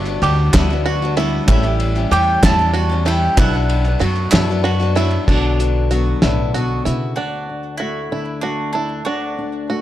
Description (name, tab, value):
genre	indie folk with a building arrangement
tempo	63 BPM (dotted quarters)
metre	6/8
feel	straight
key	D major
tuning	A4 = 440 Hz
part	bowl-back mandolin	melody	0.0-4.1, 7.2-9.8 s	D4 to A5	-23 LUFS	right 2 dB	digital delay
part	picked old ladder-braced acoustic guitar	accompaniment	0.0-7.2 s	A2 to G4	-23 LUFS	left 8 dB	none
part	warm upright piano	accompaniment	0.0-5.3 s	G1 to F#5	-29 LUFS	right 3 dB	none
part	bluegrass banjo	arpeggios	0.0-9.8 s	D4 to G4	-23 LUFS	right 5 dB	none
part	upright bass	bass	0.0-7.1 s	G1 to B2	-18 LUFS	equal	none
part	group handclap	percussion	0.1-5.2 s	none	-27 LUFS	right 3 dB	none
part	cloth-damped thuddy drum kit	drums	0.2-7.0 s	crash cymbal, hi-hat, kick drum, ride cymbal, snare drum	-20 LUFS	equal	none
part	fingerpicked steel-string acoustic guitar	accompaniment	5.3-9.8 s	D2 to F#4	-24 LUFS	left 3 dB	none
room	light reverb, studio reverb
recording	dark, warm production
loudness	-15 LUFS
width	side -13 dB against mid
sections	0.0-5.3 A section; 5.3-7.2 B section; 7.2-9.8 C section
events	upright piano fill 4.3-5.3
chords	0.0 Gmaj7; 1.5 A7; 3.4 Bm; 7.2 D